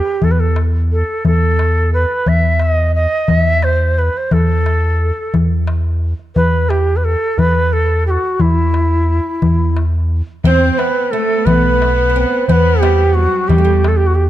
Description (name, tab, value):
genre	Arabic maqam ensemble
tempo	59 BPM (dotted quarters)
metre	6/8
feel	straight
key	E maqam nahawand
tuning	A4 = 440 Hz
part	breathy bright ney	melody	0.0-14.3 s	E4 to E5	-16 LUFS	right 1 dB	none
part	darbuka	percussion	0.1-14.0 s	none	-17 LUFS	left 2 dB	none
part	rubbery square bass	bass	0.2-14.3 s	B1 to E2	-15 LUFS	equal	none
part	bright studio cello section	second line	10.4-13.9 s	F#3 to C4	-21 LUFS	left 3 dB	none
part	oud	second line	10.5-13.9 s	G3 to C4	-22 LUFS	right 5 dB	none
room	light reverb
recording	dark, warm production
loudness	-12 LUFS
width	side -13 dB against mid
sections	0.0-10.4 A section; 10.4-14.3 B section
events	none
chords	none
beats	| 0.24 1.26 | 2.28 3.31 | 4.33 5.35 | 6.37 7.39 | 8.41 9.43 | 10.45 11.46 | 12.48 13.50